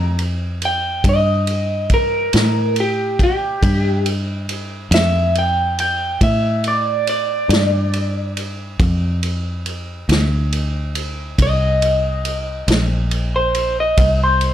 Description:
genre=slow blues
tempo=46 BPM (dotted quarters)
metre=12/8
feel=straight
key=unclear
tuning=A4 = 442 Hz
part: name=electric guitar through a small old amp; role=melody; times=0.0-14.5 s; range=G4 to G5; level=-18 LUFS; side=equal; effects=phaser
part: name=fingered electric bass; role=bass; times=0.0-14.5 s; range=Bb1 to A2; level=-19 LUFS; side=equal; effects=none
part: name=vintage drum kit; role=drums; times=0.2-14.5 s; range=kick drum, ride cymbal, snare drum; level=-22 LUFS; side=equal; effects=none
room=little or no reverb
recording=none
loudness=-16 LUFS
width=side -11 dB against mid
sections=0.0-14.5 A section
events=clean electric guitar solo 0.0-14.5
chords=0.0 C7(no3) (rootless); 8.8 F5; 14.0 N.C.

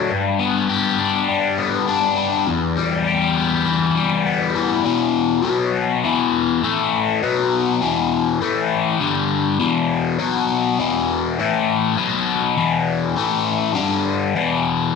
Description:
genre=rock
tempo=101 BPM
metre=4/4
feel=straight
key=E minor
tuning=A4 = 439 Hz
part: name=crunchy overdriven guitar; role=solo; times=0.0-14.9 s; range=E2 to G4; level=-17 LUFS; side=left 6 dB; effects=phaser
room=moderate echo chamber reverb, RT60 1.7 s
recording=none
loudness=-17 LUFS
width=side -5 dB against mid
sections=0.0-4.9 A section; 4.9-15.0 B section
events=none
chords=0.1 G; 2.5 Em; 4.9 E5; 5.4 B5; 6.0 E5; 6.6 A5; 7.2 B5; 7.8 E5; 8.4 A5; 9.0 G5; 9.6 E5; 10.2 B5; 10.8 E5; 11.4 A5; 12.0 B5; 12.6 E5; 13.2 A5; 13.8 G5; 14.3 E5

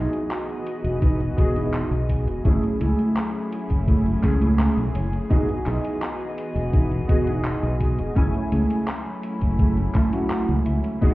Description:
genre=vaporwave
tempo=84 BPM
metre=4/4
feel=straight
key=unclear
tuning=A4 = 440 Hz
part: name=warbly lo-fi synth keys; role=accompaniment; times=0.0-11.1 s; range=A3 to G#5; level=-27 LUFS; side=right 1 dB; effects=ensemble chorus, analog delay
part: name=dark studio string section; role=sustained chords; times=0.0-11.1 s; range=E3 to D#5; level=-31 LUFS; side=left 1 dB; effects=vintage 12-bit sampler grit
part: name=mellow electric guitar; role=riff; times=0.0-11.1 s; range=A3 to A5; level=-28 LUFS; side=right 1 dB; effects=wide subtle chorus, analog delay
part: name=fingered electric bass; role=bass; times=0.0-11.1 s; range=E1 to C#2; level=-24 LUFS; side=equal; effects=none
part: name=gated 80s digital drum machine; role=drums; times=0.1-11.1 s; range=handclaps, hi-hat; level=-36 LUFS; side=equal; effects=gated reverb, small room ambience
part: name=electronic kick drum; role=drums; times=1.0-11.1 s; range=none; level=-21 LUFS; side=equal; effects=small room ambience
room=little or no reverb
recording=heard muffled through a wall, club reverb, EQ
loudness=-20 LUFS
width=side -18 dB against mid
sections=0.0-11.1 A section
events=clean electric guitar fill 4.2-5.3, 9.6-11.0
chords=0.0 Emaj7; 2.5 F#m9; 5.3 Emaj7; 8.2 F#m9

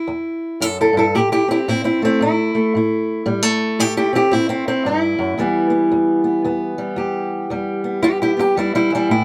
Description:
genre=acoustic country blues, solo or duo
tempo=113 BPM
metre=4/4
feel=swing 61% on 8ths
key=E minor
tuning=A4 = 441 Hz
part: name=fingerpicked steel-string acoustic guitar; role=solo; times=0.0-9.2 s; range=E2 to A4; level=-18 LUFS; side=equal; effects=none
room=light reverb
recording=none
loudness=-18 LUFS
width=mono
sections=0.0-9.2 A section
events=none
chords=0.0 Em; 1.1 Am; 5.4 Em

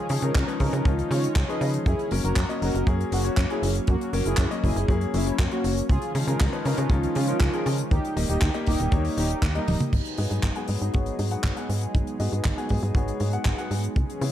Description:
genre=italo disco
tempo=119 BPM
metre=4/4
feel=straight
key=G# minor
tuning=A4 = 440 Hz
part: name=analog synth brass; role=melody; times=0.0-9.8 s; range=G3 to D#5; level=-30 LUFS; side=right 1 dB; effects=chorus, tape echo
part: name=warm analog pad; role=sustained chords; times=0.0-14.3 s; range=D#3 to G#4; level=-32 LUFS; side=right 1 dB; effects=lush chorus
part: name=warm grand piano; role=stabs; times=0.1-14.3 s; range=E#3 to G#5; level=-31 LUFS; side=left 4 dB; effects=low-pass filter
part: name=tight sequencer bass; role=bass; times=0.1-14.3 s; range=D#1 to C#3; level=-26 LUFS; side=equal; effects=none
part: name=tight funk drum kit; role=drums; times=0.1-14.3 s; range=crash cymbal, handclaps, hi-hat, toms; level=-33 LUFS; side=equal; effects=none
part: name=kick drum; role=drums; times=0.4-14.1 s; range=none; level=-24 LUFS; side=equal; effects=none
room=light reverb, studio reverb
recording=dark, warm production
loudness=-22 LUFS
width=side -11 dB against mid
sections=0.0-9.9 A section; 9.9-14.3 B section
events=drum fill 9.7; filter sweep on grand piano 9.9-14.3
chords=0.0 C#add9; 1.9 F#; 5.9 C#add9; 7.9 D#; 9.9 G#m7

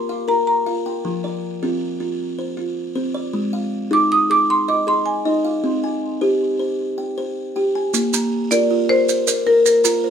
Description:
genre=southern african traditional, mbira-style interlocking cycle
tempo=104 BPM (dotted quarters)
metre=12/8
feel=straight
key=Bb mixolydian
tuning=A4 = 440 Hz
part: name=marimba with medium mallets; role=melody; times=0.0-10.1 s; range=Bb4 to Eb6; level=-17 LUFS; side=right 1 dB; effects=plate reverb, tape echo
part: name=buzzing kalimba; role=arpeggios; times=0.0-10.1 s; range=F3 to Bb5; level=-20 LUFS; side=left 2 dB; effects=none
part: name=maracas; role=percussion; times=7.9-10.0 s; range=none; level=-21 LUFS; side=right 8 dB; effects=none
part: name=buzzing kalimba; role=arpeggios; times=8.1-10.1 s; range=Bb3 to C5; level=-23 LUFS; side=right 4 dB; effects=none
room=wet studio reverb, RT60 0.5 s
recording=none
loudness=-17 LUFS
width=side -8 dB against mid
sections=0.0-7.9 A section; 7.9-10.1 B section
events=none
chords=0.0 Bb5; 1.0 F5; 3.3 Ab5; 5.6 C5; 7.9 Bb

